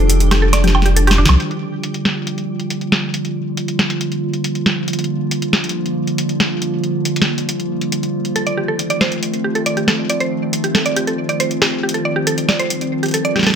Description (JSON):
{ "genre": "IDM", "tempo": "138 BPM", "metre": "4/4", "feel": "straight", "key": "G minor", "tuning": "A4 = 440 Hz", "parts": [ { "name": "warbly nostalgic lead", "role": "melody", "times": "0.0-0.9 s", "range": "A4", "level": "-30 LUFS", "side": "right 1 dB", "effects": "analog chorus, ping-pong delay" }, { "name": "warbly tape-like pad", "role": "sustained chords", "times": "0.0-13.6 s", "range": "D3 to F4", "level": "-20 LUFS", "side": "right 1 dB", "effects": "chorus, built-in reverb" }, { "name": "warm sub bass", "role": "bass", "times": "0.0-1.4 s", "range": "F1 to C2", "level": "-13 LUFS", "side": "equal", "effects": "none" }, { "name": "twinkling granular texture", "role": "texture", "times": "0.0-1.4 s", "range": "G4", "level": "-32 LUFS", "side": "right 3 dB", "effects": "built-in reverb" }, { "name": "booming analog drum machine", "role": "drums", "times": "0.1-13.5 s", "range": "hi-hat, snare drum, toms, woodblock", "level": "-18 LUFS", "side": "equal", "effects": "low-pass filter on hats, low-pass filter on toms, low-pass filter on perc, low-pass filter on snare" }, { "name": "mallet-like synth pluck", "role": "arpeggios", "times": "0.3-1.3, 8.4-13.6 s", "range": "D4 to G5", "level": "-20 LUFS", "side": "right 3 dB", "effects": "chorus, digital delay" } ], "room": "light reverb", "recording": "none", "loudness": "-15 LUFS", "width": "side -7 dB against mid", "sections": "0.0-1.4 A section; 1.4-13.6 B section", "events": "drum fill 0.5-1.4", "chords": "0.0 F7; 1.4 Gm7; 8.4 F7" }